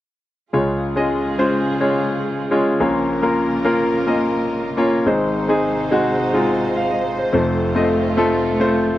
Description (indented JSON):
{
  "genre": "pop",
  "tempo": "106 BPM",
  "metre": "4/4",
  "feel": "straight",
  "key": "Db major",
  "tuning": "A4 = 438 Hz",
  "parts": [
    { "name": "bright concert grand piano", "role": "accompaniment", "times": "0.5-9.0 s", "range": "F1 to F5", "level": "-16 LUFS", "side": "left 1 dB", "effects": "none" },
    { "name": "warm studio string section", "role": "sustained chords", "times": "0.5-9.0 s", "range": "C3 to C5", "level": "-27 LUFS", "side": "right 4 dB", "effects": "none" }
  ],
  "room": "light reverb",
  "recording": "dry, close 1970s-style studio recording",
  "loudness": "-16 LUFS",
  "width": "side -14 dB against mid",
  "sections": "0.5-9.0 A section",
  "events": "none",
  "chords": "0.5 Db; 2.8 Bbm; 5.1 Ab; 7.3 F",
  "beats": "| 0.54 1.10 1.67 2.23 | 2.80 3.37 3.93 4.50 | 5.07 5.63 6.20 6.76 | 7.33 7.89 8.46"
}